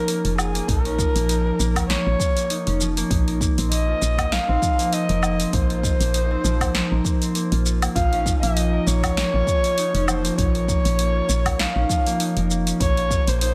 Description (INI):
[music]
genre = organic downtempo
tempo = 99 BPM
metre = 4/4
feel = swing 55% on 16ths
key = Bb minor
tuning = A4 = 440 Hz
[part]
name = dark kamancheh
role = melody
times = 0.0-13.5 s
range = Ab4 to F5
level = -27 LUFS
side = equal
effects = tape echo
[part]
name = concert harp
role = arpeggios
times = 0.0-13.5 s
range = F3 to Bb4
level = -28 LUFS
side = equal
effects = digital delay
[part]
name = deep house drum kit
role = drums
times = 0.1-13.5 s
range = hi-hat, shaker, snare drum, woodblock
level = -29 LUFS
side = equal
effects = none
[part]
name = woody FM bass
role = bass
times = 0.2-13.5 s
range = F1 to Bb1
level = -25 LUFS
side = equal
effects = none
[part]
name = electronic kick drum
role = drums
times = 0.7-13.2 s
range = none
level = -26 LUFS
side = equal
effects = none
[part]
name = quartz singing bowl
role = texture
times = 8.0-13.5 s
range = F4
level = -39 LUFS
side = equal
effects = none
[sound]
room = light reverb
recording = none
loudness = -21 LUFS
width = mono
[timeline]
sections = 0.0-13.5 A section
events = none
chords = 0.0 Bbm; 3.1 Cm7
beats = 0.08 | 0.69 1.29 1.90 2.50 | 3.11 3.71 4.32 4.93 | 5.53 6.14 6.75 7.35 | 7.96 8.56 9.17 9.78 | 10.38 10.99 11.59 12.20 | 12.81 13.41